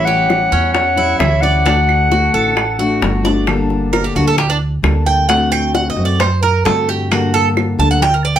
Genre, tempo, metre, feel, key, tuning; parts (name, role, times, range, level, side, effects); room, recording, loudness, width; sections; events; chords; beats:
latin, Cuban son and guajira; 132 BPM; 4/4; straight; G harmonic minor from 3.5 s; A4 = 439 Hz
mellow clarinet; melody; 0.0-3.2 s; E5 to F#5; -15 LUFS; left 2 dB
nylon-string guitar; second line; 0.0-3.2 s; C#5 to D5; -25 LUFS; right 6 dB
fingerpicked steel-string acoustic guitar; accompaniment; 0.0-8.0 s; D3 to A4; -19 LUFS; left 4 dB
Cuban tres; arpeggios; 0.0-8.4 s; C#4 to A5; -17 LUFS; right 4 dB
upright bass; bass; 0.0-8.4 s; G1 to G2; -18 LUFS; right 1 dB
bongos; percussion; 0.1-8.3 s; -21 LUFS; left 5 dB
claves; percussion; 0.3-7.8 s; -24 LUFS; right 6 dB
moderate studio reverb, RT60 0.6 s; -12 LUFS; side -10 dB against mid
0.0-3.5 A section; 3.5-8.4 B section
drum fill 3.2; Cuban tres solo 3.5-8.4
0.0 A7; 1.7 D; 3.5 Gmadd9; 5.3 D7; 7.1 Gmadd9
0.30 0.76 1.21 | 1.66 2.12 2.57 3.02 | 3.48 3.93 4.38 4.84 | 5.29 5.75 6.20 6.66 | 7.11 7.57 8.02